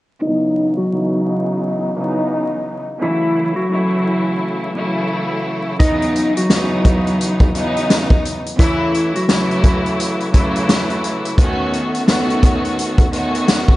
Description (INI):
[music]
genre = hip hop, boom-bap hip-hop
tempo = 86 BPM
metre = 4/4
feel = swing 61% on 16ths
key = C# minor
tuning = A4 = 440 Hz
[part]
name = mellow electric guitar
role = melody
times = 0.2-11.3 s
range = E3 to D#5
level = -20 LUFS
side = equal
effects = high-pass filter, low-pass filter, digital delay
[part]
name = rich studio string section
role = accompaniment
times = 0.2-13.8 s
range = C#3 to F#4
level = -19 LUFS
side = equal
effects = cassette tape, high-pass filter, low-pass filter
[part]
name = vintage drum kit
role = drums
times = 5.8-13.8 s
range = hi-hat, kick drum, snare drum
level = -15 LUFS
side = equal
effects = none
[sound]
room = light reverb, small room ambience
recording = vinyl crackle, nothing above 10.4 kHz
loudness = -15 LUFS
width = side -17 dB against mid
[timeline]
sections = 0.2-5.8 A section; 5.8-13.8 B section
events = filter sweep 0.2-5.8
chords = 0.2 C#m11; 3.0 F#m7; 5.8 C#m11; 8.6 F#m7; 11.4 B9